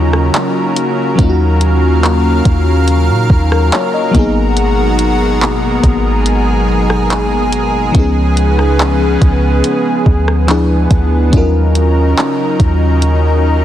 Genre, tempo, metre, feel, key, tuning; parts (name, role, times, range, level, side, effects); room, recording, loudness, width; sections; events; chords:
contemporary R&B; 71 BPM; 4/4; straight; Eb minor; A4 = 439 Hz
FM electric piano with soft pad layer; accompaniment; 0.0-13.6 s; F3 to Eb5; -16 LUFS; left 2 dB; chorus
lush unison pad; sustained chords; 0.0-13.6 s; Cb3 to F5; -17 LUFS; right 1 dB; chorus
clean 808-style bass; bass; 0.0-13.6 s; Ab1 to Bb2; -13 LUFS; equal
smooth R&B drum kit; drums; 0.1-13.2 s; handclaps, hi-hat, kick drum, rim click; -15 LUFS; equal; soft clipping on snare
little or no reverb; dense, heavily limited modern master; -10 LUFS; side -11 dB against mid
0.0-13.6 A section
0.0 Ebm7; 4.1 Abm9; 7.9 Db7; 10.5 Ddim7; 11.3 Ebm7